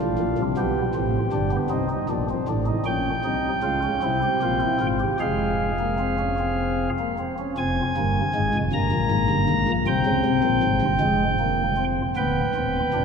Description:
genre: classical, baroque-style 4-part fugue for pipe organ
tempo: 52 BPM (dotted quarters)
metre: 6/8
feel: straight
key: F minor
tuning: A4 = 440 Hz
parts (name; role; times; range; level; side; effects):
- pipe organ, flutes; solo; 0.0-13.0 s; D1 to Bb5; -20 LUFS; equal; none
room: wet cathedral reverb, RT60 4.9 s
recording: none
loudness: -21 LUFS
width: side -6 dB against mid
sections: 0.0-7.6 A section; 7.6-12.2 B section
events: none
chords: 0.0 Dm/A; 0.6 G; 1.7 Cm; 2.9 Gm7b5/Bb; 4.0 C7; 5.2 Fm; 8.7 Gm; 9.9 C5; 11.0 Fm; 12.2 G7/D

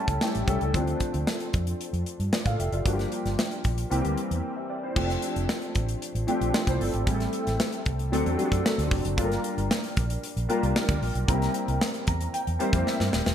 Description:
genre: polished 1980s jazz-funk pop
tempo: 114 BPM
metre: 4/4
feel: straight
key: F major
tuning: A4 = 440 Hz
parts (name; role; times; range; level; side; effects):
- warm concert grand piano; accompaniment; 0.0-13.3 s; E3 to Bb5; -28 LUFS; left 1 dB; ensemble chorus
- vintage muted fingered electric bass; bass; 0.1-13.3 s; Eb1 to A2; -28 LUFS; equal; none
- modern studio drum kit; drums; 0.1-13.3 s; crash cymbal, hi-hat, kick drum, snare drum; -28 LUFS; equal; gated reverb
room: light reverb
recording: bright 1980s-style digital production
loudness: -24 LUFS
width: side -9 dB against mid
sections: 0.0-5.0 A section; 5.0-13.3 B section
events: grand piano fill 0.0-0.7, 11.8-13.3; break 4.4-5.0; drum fill 12.9-13.3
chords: 0.0 A7; 0.7 Dm7; 2.9 Gm7; 3.9 C7; 5.0 F69; 7.1 Am7; 8.1 D7; 9.2 Gm7; 11.3 C7

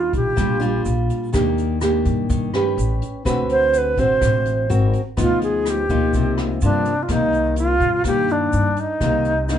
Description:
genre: bossa nova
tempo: 125 BPM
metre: 4/4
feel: straight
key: C minor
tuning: A4 = 442 Hz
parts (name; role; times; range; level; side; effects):
- bright reedy alto flute; melody; 0.0-9.6 s; D4 to C5; -19 LUFS; right 1 dB; none
- nylon-string guitar; accompaniment; 0.0-9.6 s; G2 to B4; -22 LUFS; left 1 dB; none
- upright bass; bass; 0.0-9.6 s; Ab1 to G2; -23 LUFS; equal; none
- jazz brush drum kit; drums; 0.1-9.6 s; hi-hat, kick drum, rim click; -26 LUFS; left 1 dB; none
- tube shaker; percussion; 0.1-9.6 s; none; -41 LUFS; right 6 dB; none
room: moderate small room reverb, RT60 0.5 s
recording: band playing live in one room, nothing above 10.3 kHz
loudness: -17 LUFS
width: side -10 dB against mid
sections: 0.0-7.1 A section; 7.1-9.6 B section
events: alto flute solo 0.0-7.1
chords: 0.0 Ebmaj9; 1.3 Ebmaj7; 2.8 A9; 3.3 D6; 4.7 Ab9; 5.2 G7b13/D; 6.1 Cm11; 7.1 Cm9

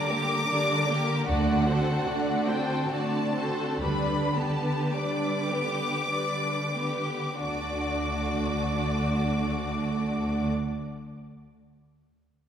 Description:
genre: classical, slow romantic movement for symphony orchestra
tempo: 42-78 BPM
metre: 3/4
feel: rubato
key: D major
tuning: A4 = 441 Hz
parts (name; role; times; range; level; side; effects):
- rich studio violin section; melody; 0.0-10.5 s; F#5 to D6; -31 LUFS; left 2 dB; none
- rich studio violin section; second line; 0.0-10.5 s; F#4 to D5; -32 LUFS; left 2 dB; none
- warm studio viola section; accompaniment; 0.0-10.5 s; G3 to F#4; -30 LUFS; right 2 dB; none
- rich studio cello section; bass; 0.0-10.5 s; D3; -32 LUFS; right 1 dB; none
- warm studio double bass section; bass; 1.3-10.5 s; D2; -34 LUFS; right 1 dB; none
room: wet concert hall reverb, RT60 2.1 s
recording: heard from further back in the room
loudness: -25 LUFS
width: side -8 dB against mid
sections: 0.0-7.4 A section; 7.4-11.1 B section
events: slowing down 0.1-7.4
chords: 0.0 Gm/D; 1.3 D7; 3.8 G/D; 7.4 D

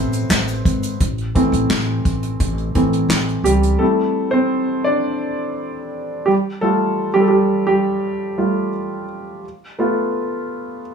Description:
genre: piano-driven pop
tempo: 85 BPM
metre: 4/4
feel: straight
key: A minor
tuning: A4 = 441 Hz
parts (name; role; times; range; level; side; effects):
- clear grand piano; accompaniment; 0.0-10.9 s; E3 to E5; -18 LUFS; right 1 dB; none
- upright bass; bass; 0.0-3.7 s; G#1 to C#2; -21 LUFS; equal; none
- unplugged drum kit; drums; 0.1-3.8 s; handclaps, hi-hat, kick drum, snare drum; -20 LUFS; equal; none
- egg shaker; percussion; 0.1-1.0 s; none; -38 LUFS; left 9 dB; none
room: moderate large studio reverb, RT60 0.9 s, studio ambience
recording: none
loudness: -16 LUFS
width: side -6 dB against mid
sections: 0.0-1.0 A section; 1.0-3.8 B section; 3.8-10.9 C section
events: grand piano solo 0.0-1.0, 1.0-3.8, 3.8-10.9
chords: 0.0 Am; 3.8 D7sus4; 6.3 Fadd9; 9.4 Asus2

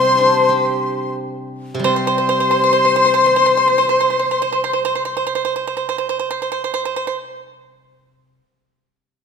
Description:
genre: chinese traditional, Chinese chamber ensemble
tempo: 43 BPM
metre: 2/4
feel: rubato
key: unclear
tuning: A4 = 438 Hz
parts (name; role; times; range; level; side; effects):
- large dizi; melody; 0.0-5.3 s; C6; -21 LUFS; right 1 dB; none
- bright large dizi; second line; 0.0-5.2 s; C6; -19 LUFS; left 5 dB; none
- dark horsehead fiddle; second line; 0.0-5.3 s; C5; -19 LUFS; left 4 dB; none
- pipa; second line; 0.0-7.2 s; C5; -20 LUFS; right 6 dB; none
- steel-string zither; accompaniment; 0.0-8.4 s; C3 to G4; -25 LUFS; right 2 dB; none
room: moderate scoring stage reverb, RT60 1.7 s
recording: none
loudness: -15 LUFS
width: side -6 dB against mid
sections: 0.0-1.9 A section; 1.9-7.5 B section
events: slowing down 0.0-1.9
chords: none

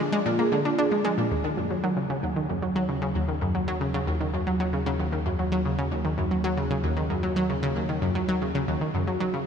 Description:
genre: ambient, sequencer-driven space music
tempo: 114 BPM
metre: 4/4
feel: straight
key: Eb minor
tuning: A4 = 440 Hz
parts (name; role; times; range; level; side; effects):
- vibraphone with medium mallets; arpeggios; 0.0-9.4 s; E#3 to G#4; -34 LUFS; right 2 dB; auto-pan, tape echo
- analog pluck; riff; 0.0-9.4 s; Eb2 to D4; -25 LUFS; equal; chorus, tape echo
- round analog bass; bass; 1.3-9.5 s; Eb2; -33 LUFS; equal; none
room: wet huge ambient reverb, RT60 7.1 s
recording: dreamy mix soaked in reverb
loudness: -24 LUFS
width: side -7 dB against mid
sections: 0.0-1.3 A section; 1.3-9.5 B section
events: none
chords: 0.0 A#7; 1.3 Ebm

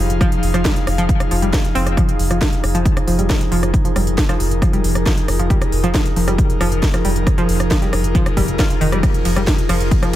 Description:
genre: driving peak-time techno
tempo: 136 BPM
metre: 4/4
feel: straight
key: F minor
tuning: A4 = 440 Hz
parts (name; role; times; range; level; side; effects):
- saturated sub bass; bass; 0.0-10.2 s; F1; -19 LUFS; equal; tube saturation, sidechain pumping, low-pass filter
- deep dark ambient pad; drone; 0.0-10.2 s; F3 to F4; -26 LUFS; equal; chorus, built-in reverb, sidechain pumping
- airy breathy pad; texture; 0.0-10.2 s; Eb4 to F5; -25 LUFS; equal; chorus, sidechain pumping
- techno drum kit; drums; 0.1-10.2 s; hi-hat, ride cymbal, rim click, snare drum; -24 LUFS; equal; overdrive
- warbly dusty pluck; riff; 0.2-10.2 s; Eb3 to F4; -22 LUFS; left 1 dB; chorus, sidechain pumping, ping-pong delay
- electronic kick drum; drums; 0.2-10.0 s; none; -17 LUFS; equal; overdrive
room: little or no reverb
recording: none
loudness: -14 LUFS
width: side -13 dB against mid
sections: 0.0-10.2 A section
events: none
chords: 0.0 Fm

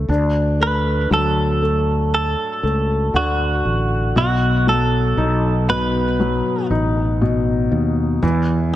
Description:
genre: pop ballad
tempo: 59 BPM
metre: 4/4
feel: straight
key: unclear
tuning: A4 = 440 Hz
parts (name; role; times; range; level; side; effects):
- felt-muted upright piano; accompaniment; 0.0-8.8 s; B2 to D#4; -20 LUFS; left 2 dB; none
- fretless electric bass; bass; 0.0-8.8 s; A1 to E2; -20 LUFS; equal; none
- direct-recorded clean electric guitar; melody; 0.6-6.7 s; F#4 to B4; -21 LUFS; right 2 dB; tape echo
room: light reverb, small room ambience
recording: none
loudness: -16 LUFS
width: side -13 dB against mid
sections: 0.0-8.8 A section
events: none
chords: 0.1 D; 4.2 B7; 8.2 N.C.

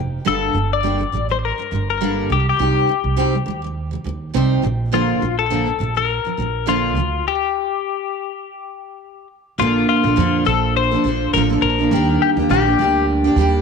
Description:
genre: acoustic pop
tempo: 103 BPM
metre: 4/4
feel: swing 55% on 16ths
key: unclear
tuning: A4 = 440 Hz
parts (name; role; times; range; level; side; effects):
- picked steel-string acoustic guitar; accompaniment; 0.0-13.6 s; G2 to Bb4; -19 LUFS; right 2 dB; double-tracked left and right
- upright bass; bass; 0.0-13.6 s; F1 to F2; -21 LUFS; right 2 dB; none
- twelve-string electric guitar; melody; 0.3-13.0 s; F4 to D5; -20 LUFS; left 10 dB; slapback echo
room: moderate spring reverb, RT60 2.4 s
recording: none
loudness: -16 LUFS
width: side -5 dB against mid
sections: 0.0-9.6 A section; 9.6-13.6 B section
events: stop 7.3-9.6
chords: 0.3 Gmadd9; 2.3 Cm; 4.6 Bb; 7.3 N.C.; 9.6 Bbmaj7; 11.9 Ebmaj7

